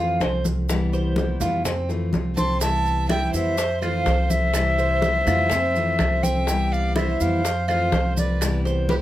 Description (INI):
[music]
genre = latin, Cuban son and guajira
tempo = 124 BPM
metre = 4/4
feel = straight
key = C major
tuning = A4 = 440 Hz
[part]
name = fingerpicked plugged-in steel-string acoustic guitar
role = accompaniment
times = 0.0-9.0 s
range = C3 to F4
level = -28 LUFS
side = left 2 dB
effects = none
[part]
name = Cuban tres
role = arpeggios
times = 0.0-9.0 s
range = C4 to C5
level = -27 LUFS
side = right 2 dB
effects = none
[part]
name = upright bass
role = bass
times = 0.0-9.0 s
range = C2 to F2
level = -24 LUFS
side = equal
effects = none
[part]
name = bongos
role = percussion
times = 0.2-9.0 s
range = none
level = -32 LUFS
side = left 4 dB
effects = none
[part]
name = congas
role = percussion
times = 0.2-9.0 s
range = none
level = -28 LUFS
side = equal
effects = none
[part]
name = maracas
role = percussion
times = 0.2-9.0 s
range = none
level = -35 LUFS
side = right 6 dB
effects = none
[part]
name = reedy silver concert flute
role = melody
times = 2.4-8.9 s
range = B4 to C6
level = -24 LUFS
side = left 1 dB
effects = none
[part]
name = bright violin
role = second line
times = 2.4-9.0 s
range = G4 to A5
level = -32 LUFS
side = right 6 dB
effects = none
[part]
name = claves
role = percussion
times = 3.1-8.7 s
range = none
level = -36 LUFS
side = right 4 dB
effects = none
[sound]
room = moderate studio reverb, RT60 0.6 s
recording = none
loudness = -19 LUFS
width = side -14 dB against mid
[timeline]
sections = 0.0-9.0 A section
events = drum fill 2.1-2.6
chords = 0.0 Fmaj7; 0.7 Cmaj7; 1.7 Fmaj7; 2.6 Cmaj7; 3.6 Fmaj7; 4.5 Cmaj7; 5.5 Fmaj7; 6.5 Cmaj7; 7.4 Fmaj7; 8.4 Cmaj7